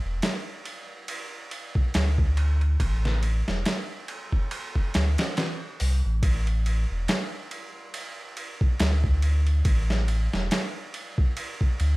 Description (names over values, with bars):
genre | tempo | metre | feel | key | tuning
trip hop | 70 BPM | 4/4 | swing 56% on 16ths | A minor | A4 = 440 Hz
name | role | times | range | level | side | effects
warm sub bass | bass | 0.0-12.0 s | E1 to D2 | -23 LUFS | equal | none
boom bap sampler-style drum kit | drums | 0.2-12.0 s | hi-hat, kick drum, ride cymbal, snare drum | -27 LUFS | equal | none
room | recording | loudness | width
little or no reverb | vinyl crackle | -23 LUFS | side -21 dB against mid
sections
0.0-6.2 A section; 6.2-12.0 B section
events
none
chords
none